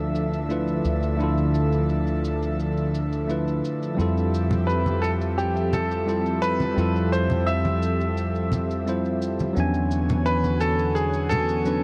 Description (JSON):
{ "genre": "sunset chillout", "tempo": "86 BPM", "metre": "4/4", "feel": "straight", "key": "unclear", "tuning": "A4 = 440 Hz", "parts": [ { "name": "tine electric piano", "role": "accompaniment", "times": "0.0-11.8 s", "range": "F#3 to G#5", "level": "-30 LUFS", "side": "equal", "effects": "tape echo" }, { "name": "airy breathy pad", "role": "sustained chords", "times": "0.0-11.8 s", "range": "D3 to G#5", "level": "-30 LUFS", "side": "equal", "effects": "chorus" }, { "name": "fretless electric bass", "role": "bass", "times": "0.0-11.8 s", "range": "D2 to F2", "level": "-29 LUFS", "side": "equal", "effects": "tube saturation, lush chorus" }, { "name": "shaker", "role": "drums", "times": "0.2-11.8 s", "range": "none", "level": "-49 LUFS", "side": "equal", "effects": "low-pass filter on perc, low-pass filter on room" }, { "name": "congas", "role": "percussion", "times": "4.5-11.5 s", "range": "none", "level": "-30 LUFS", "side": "equal", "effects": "none" }, { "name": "bright baby grand piano", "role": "melody", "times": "4.7-11.8 s", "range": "G4 to E5", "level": "-28 LUFS", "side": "equal", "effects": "tape echo" } ], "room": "moderate lush hall reverb, RT60 2.7 s", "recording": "dark, warm production", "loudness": "-24 LUFS", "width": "mono", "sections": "0.0-11.8 A section", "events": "none", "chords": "0.0 Dmadd9; 4.0 Fmaj7; 9.6 E13", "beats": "0.49 | 1.19 1.89 2.59 3.28 | 3.98 4.68 5.38 6.08 | 6.77 7.47 8.17 8.87 | 9.56 10.26 10.96 11.66" }